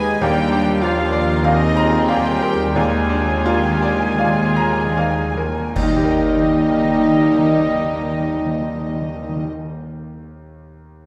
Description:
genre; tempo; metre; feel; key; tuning
classical, romantic movement for piano and orchestra; 36-52 BPM; 4/4; rubato; Eb major; A4 = 440 Hz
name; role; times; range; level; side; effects
bright concert grand piano; melody; 0.0-11.1 s; Eb2 to Cb6; -25 LUFS; equal; none
warm studio violin section; melody; 0.0-9.5 s; Eb5 to Ab5; -31 LUFS; equal; none
dark studio violin section; second line; 0.0-9.5 s; Eb4 to Cb5; -32 LUFS; equal; none
mellow silver concert flute; second line; 0.0-9.5 s; Eb5 to Ab5; -33 LUFS; equal; none
warm oboe; second line; 0.0-9.5 s; Eb4 to Eb5; -30 LUFS; equal; none
rich studio viola section; accompaniment; 0.0-9.5 s; Ab3 to F4; -28 LUFS; equal; none
dark French horn section; sustained chords; 0.0-9.4 s; Eb3 to Eb4; -25 LUFS; equal; none
rich studio double bass section; bass; 0.0-9.5 s; Eb2; -27 LUFS; equal; none
warm studio cello section; bass; 0.0-9.5 s; Eb2; -32 LUFS; equal; none
dark clarinet; second line; 0.2-9.5 s; D5 to Eb5; -33 LUFS; equal; none
warm bassoon; accompaniment; 0.2-9.5 s; G3 to Bb3; -30 LUFS; equal; none
timpani; percussion; 0.2-9.5 s; Eb3; -29 LUFS; equal; none
clash cymbals and concert bass drum; percussion; 5.8-8.7 s; none; -30 LUFS; equal; none
room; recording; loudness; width
wet scoring stage reverb, RT60 1.9 s; none; -18 LUFS; mono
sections
0.0-5.8 A section; 5.8-11.1 B section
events
slowing down 0.0-5.8; timpani fill 0.2-5.8; band accent 5.8-7.2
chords
0.2 Bb7/Eb; 5.8 Eb

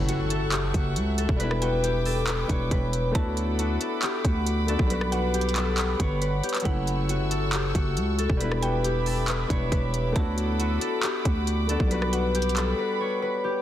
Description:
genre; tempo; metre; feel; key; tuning
hip hop, trap; 137 BPM; 4/4; half-time; F# phrygian; A4 = 440 Hz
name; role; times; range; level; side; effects
concert harp; melody; 0.0-13.6 s; E4 to C#5; -29 LUFS; left 3 dB; none
mallet-like synth pluck; second line; 0.0-13.2 s; F#5 to A5; -39 LUFS; right 5 dB; chorus, digital delay
clear concert grand piano; accompaniment; 0.0-13.6 s; F#3 to F#4; -34 LUFS; left 1 dB; none
warm chamber string section; sustained chords; 0.0-13.6 s; G3 to E6; -34 LUFS; right 2 dB; none
growling 808-style bass; bass; 0.0-12.7 s; E1 to D2; -27 LUFS; equal; none
impact; sound effects; 0.0-1.4 s; none; -36 LUFS; right 2 dB; none
trap drum kit; drums; 0.1-12.7 s; handclaps, hi-hat, kick drum, rim click; -28 LUFS; equal; none
room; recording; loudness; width
little or no reverb; dense, heavily limited modern master; -23 LUFS; side -11 dB against mid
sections
0.0-13.6 A section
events
impact 0.0-1.4; break 12.8-13.6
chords
0.0 F#m7; 1.4 Em7; 3.1 D6; 4.9 Gmaj7; 6.7 F#m7; 8.4 Em7; 10.2 D6; 11.9 Gmaj7

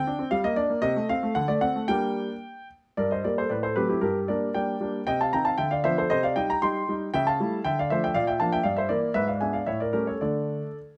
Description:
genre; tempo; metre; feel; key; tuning
classical-period piano sonatina; 108-121 BPM; 2/4; rubato; G minor, D minor from 7.1 s; A4 = 440 Hz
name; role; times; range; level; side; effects
clear grand piano; solo; 0.0-10.8 s; G2 to C6; -26 LUFS; equal; none
room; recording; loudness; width
light reverb; none; -26 LUFS; mono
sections
0.0-3.0 A section; 3.0-11.0 A section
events
none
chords
0.3 Gm; 0.8 Adim/C; 1.4 D7; 1.9 Gm; 3.5 F#dim/A; 4.0 Gm; 5.1 Cm; 5.6 Bdim/D; 6.1 Cm; 7.1 A7/C#; 7.6 Dm; 8.1 Bb; 8.6 Em7b5/G; 9.2 G#dim; 9.7 A7; 10.2 D5

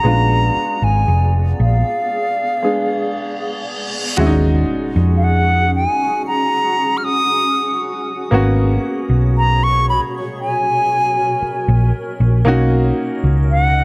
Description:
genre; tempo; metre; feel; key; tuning
contemporary R&B; 58 BPM; 4/4; straight; Eb minor; A4 = 440 Hz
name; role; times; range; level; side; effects
silver concert flute; melody; 0.0-13.8 s; F5 to F6; -20 LUFS; equal; tape echo
clear baby grand piano; accompaniment; 0.0-13.8 s; Ab3 to Ab4; -24 LUFS; equal; none
granular cloud pad; sustained chords; 0.0-13.8 s; Cb3 to Gb5; -29 LUFS; equal; built-in reverb
hollow-body short-scale picked electric bass; bass; 0.0-13.8 s; F1 to F2; -17 LUFS; equal; none
reverse cymbal and impact; sound effects; 3.0-8.3 s; none; -30 LUFS; equal; none
room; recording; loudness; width
light reverb, small room ambience; none; -17 LUFS; mono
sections
0.0-4.2 A section; 4.2-13.8 B section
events
break 2.1-4.2; reverse cymbal 3.0-4.2; impact 4.2-8.3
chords
0.0 Bb7b9; 4.2 Ebm11; 8.3 Abm11; 12.5 Bmaj7

